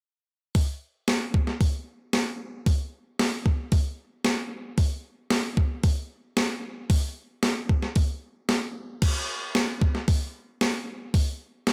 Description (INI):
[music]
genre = rock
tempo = 113 BPM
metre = 4/4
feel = straight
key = none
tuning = none
[part]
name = clean 12-bit digital drum machine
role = drums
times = 0.5-11.7 s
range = crash cymbal, hi-hat, kick drum, snare drum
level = -26 LUFS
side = equal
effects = overdrive
[sound]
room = moderate plate reverb, RT60 1.9 s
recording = none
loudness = -27 LUFS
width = mono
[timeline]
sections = 0.6-11.7 A section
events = none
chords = none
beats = | 0.55 1.08 1.61 2.13 | 2.66 3.19 3.72 4.25 | 4.78 5.31 5.84 6.37 | 6.90 7.43 7.96 8.49 | 9.02 9.55 10.08 10.61 | 11.14 11.67